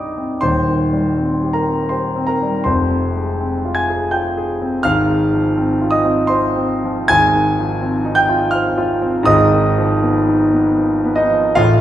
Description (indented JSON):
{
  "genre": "classical, romantic character piece for solo piano",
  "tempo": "81 BPM",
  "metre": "3/4",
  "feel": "uneven beats, rubato",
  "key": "unclear",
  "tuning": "A4 = 439 Hz",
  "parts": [
    { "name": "warm concert grand piano", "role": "solo", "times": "0.0-11.8 s", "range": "Eb1 to Ab6", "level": "-14 LUFS", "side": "equal", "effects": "none" }
  ],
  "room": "wet recital hall reverb, RT60 1.4 s",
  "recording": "heard from further back in the room",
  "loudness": "-14 LUFS",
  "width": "side -12 dB against mid",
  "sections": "0.0-11.8 A section",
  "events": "none",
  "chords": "0.4 Cm/Eb; 2.7 Fm; 4.9 Fm/Ab; 7.1 Fm7/Ab; 9.3 Fm7b5/Ab",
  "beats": "| 0.43 1.19 1.94 | 2.67 3.41 4.14 | 4.86 5.58 6.31 | 7.11 7.83 8.54 | 9.28 10.04 10.79 | 11.57"
}